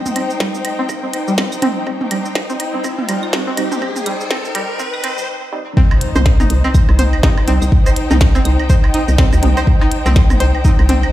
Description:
minimal techno; 123 BPM; 4/4; swing 59% on 16ths; C minor; A4 = 440 Hz
riser and impact; sound effects; 0.0-7.7 s; -25 LUFS; left 1 dB
warm studio string section; texture; 0.0-11.1 s; Eb4 to G5; -23 LUFS; left 2 dB; sidechain pumping
minimal click drum kit; drums; 0.1-11.0 s; hi-hat, shaker, snare drum; -22 LUFS; equal
electronic toms, claves and woodblock; percussion; 0.1-11.1 s; -24 LUFS; right 3 dB; tape echo
string-like resonator pluck; riff; 0.2-10.9 s; G3 to C5; -23 LUFS; equal; chorus, sidechain pumping, digital delay
electronic kick drum; drums; 0.4-10.8 s; -12 LUFS; equal; high-pass filter on kick, high-pass filter on room
filtered dub chord stab; stabs; 1.4-9.6 s; G3 to Eb4; -24 LUFS; right 3 dB; wide subtle chorus, tape echo
hollow knocking FM bass; bass; 6.2-11.1 s; G1 to D2; -14 LUFS; equal; tube saturation, sidechain pumping
digital ambience; played on a big sound system in a bare room, large studio reverb, high-pass filter; -13 LUFS; side -14 dB against mid
0.0-5.8 A section; 5.8-11.1 B section
build-up 0.0-5.8; riser 0.0-5.3; filter sweep on synth pluck 0.0-5.8; filter sweep on synth stab 0.0-5.8; break 5.3-5.8; drop 5.8-11.1; impact 5.8-7.7
0.0 Cm
0.40 0.89 1.38 | 1.87 2.35 2.84 3.33 | 3.82 4.31 4.79 5.28 | 5.77 6.26 6.75 7.23 | 7.72 8.21 8.70 9.18 | 9.67 10.16 10.65

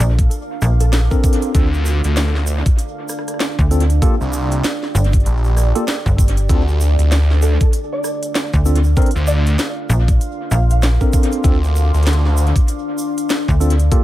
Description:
glitch hop; 97 BPM; 4/4; swing 60% on 16ths; D minor; A4 = 440 Hz
woody wave-folded pluck; melody; 0.0-1.1, 7.4-10.8 s; A4 to F5; -27 LUFS; equal; ensemble chorus, analog delay
slap-like FM bass; bass; 0.0-13.9 s; G1 to D2; -14 LUFS; equal; tube saturation
drum and bass drum kit; drums; 0.0-14.0 s; hi-hat, rim click, snare drum; -24 LUFS; equal; analog delay
egg shaker; percussion; 0.0-14.0 s; -34 LUFS; right 4 dB
deep dark ambient pad; texture; 0.0-14.0 s; D4 to D6; -26 LUFS; right 1 dB; chorus, built-in reverb, sidechain pumping
electronic kick drum; drums; 0.2-14.0 s; -15 LUFS; equal
tine electric piano; stabs; 1.1-14.0 s; Bb3 to Bb4; -22 LUFS; equal; fast stereo tremolo, sidechain pumping, analog delay
phased detuned saw bass; bass; 1.5-12.5 s; Bb1 to D2; -14 LUFS; equal; phaser
little or no reverb; echo-heavy mix; -14 LUFS; side -15 dB against mid
0.0-14.0 A section
0.0 Bbmaj9; 1.5 Dm7; 4.0 Gm7; 6.5 Dm; 9.0 Bbmaj9; 11.4 Dm7
0.31 0.93 | 1.55 2.17 2.79 3.40 | 4.02 4.64 5.26 5.88 | 6.50 7.12 7.73 8.35 | 8.97 9.59 10.21 10.83 | 11.45 12.06 12.68 13.30 | 13.92

